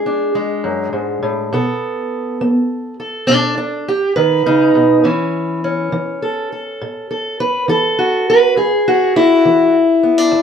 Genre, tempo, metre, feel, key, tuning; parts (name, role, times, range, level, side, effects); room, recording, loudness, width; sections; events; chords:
acoustic country blues, solo or duo; 68 BPM (dotted quarters); 12/8; straight; E mixolydian; A4 = 440 Hz
fingerpicked steel-string acoustic guitar; solo; 0.0-10.4 s; E2 to B4; -13 LUFS; equal
wet studio reverb, RT60 0.6 s; band playing live in one room; -13 LUFS; side -7 dB against mid
0.0-10.4 A section
0.0 E7; 1.5 B7; 5.0 A; 8.6 E7